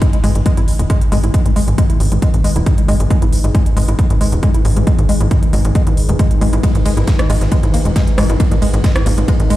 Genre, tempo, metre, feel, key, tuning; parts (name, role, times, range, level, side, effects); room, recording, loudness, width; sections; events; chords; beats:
driving peak-time techno; 136 BPM; 4/4; straight; G# minor; A4 = 440 Hz
analog drone; drone; 0.0-9.6 s; G#2 to D#3; -23 LUFS; left 1 dB; chorus, sidechain pumping
electronic kick drum; drums; 0.0-9.4 s; -14 LUFS; equal; overdrive, studio reverb
techno drum kit; drums; 0.0-9.6 s; hi-hat, rim click; -27 LUFS; equal; overdrive, studio reverb
warbly tape-like pad; texture; 0.0-9.6 s; D#4 to G#5; -33 LUFS; right 3 dB
warbly dusty pluck; riff; 0.1-9.6 s; G#3 to E4; -21 LUFS; left 2 dB; chorus, cassette tape, sidechain pumping, tape echo
tight sequencer bass; bass; 0.2-9.5 s; D#1 to G#1; -16 LUFS; equal; sidechain pumping
big rock drum kit; drums; 6.6-9.6 s; ride cymbal, snare drum; -32 LUFS; right 2 dB; sidechain pumping on cymbals, high-pass filter on cymbals, studio reverb, high-pass filter on snare, high-pass filter on room
little or no reverb; played on a big sound system in a bare room, large studio reverb; -11 LUFS; side -15 dB against mid
0.0-9.6 A section
0.0 G#m
0.02 0.46 0.90 | 1.34 1.78 2.22 2.66 | 3.10 3.55 3.99 4.43 | 4.87 5.31 5.75 6.19 | 6.63 7.08 7.52 7.96 | 8.40 8.84 9.28